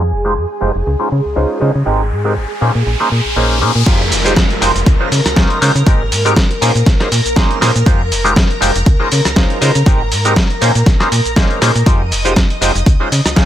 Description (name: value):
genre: filtered disco house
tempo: 120 BPM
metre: 4/4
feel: swing 54% on 16ths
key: F minor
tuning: A4 = 439 Hz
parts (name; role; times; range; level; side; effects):
- overdriven clav; accompaniment; 0.0-13.5 s; Ab3 to C5; -17 LUFS; equal; phaser, sidechain pumping, low-pass filter
- string machine, full ensemble; sustained chords; 0.0-13.5 s; Ab4 to Eb6; -21 LUFS; equal; ensemble chorus, vintage 12-bit sampler grit, sidechain pumping, low-pass filter
- slap-like FM bass; bass; 0.0-13.5 s; F1 to Db3; -16 LUFS; equal; sidechain pumping, low-pass filter
- riser and downlifter; sound effects; 1.5-7.9 s; none; -23 LUFS; equal; none
- dusty soul sampler-style drum kit; drums; 3.9-13.5 s; crash cymbal, hi-hat, rim click, shaker, snare drum; -17 LUFS; equal; overdrive, sidechain pumping on hats, sidechain pumping on cymbals, sidechain pumping on perc
- electronic kick drum; drums; 3.9-13.5 s; none; -12 LUFS; equal; overdrive
room: light reverb, digital ambience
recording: none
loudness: -11 LUFS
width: side -11 dB against mid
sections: 0.0-3.9 A section; 3.9-13.5 B section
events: filter sweep 0.0-3.9; riser 1.5-3.9; drop 3.9-13.5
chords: 0.0 Fm9; 0.9 Dbmaj9; 1.9 Abmaj9; 2.6 Bbm11; 3.9 Fm9; 4.9 Dbmaj9; 5.9 Abmaj9; 6.6 Bbm11; 7.9 Fm9; 8.9 Dbmaj9; 9.9 Abmaj9; 10.6 Bbm11; 11.9 Fm9; 12.9 Dbmaj9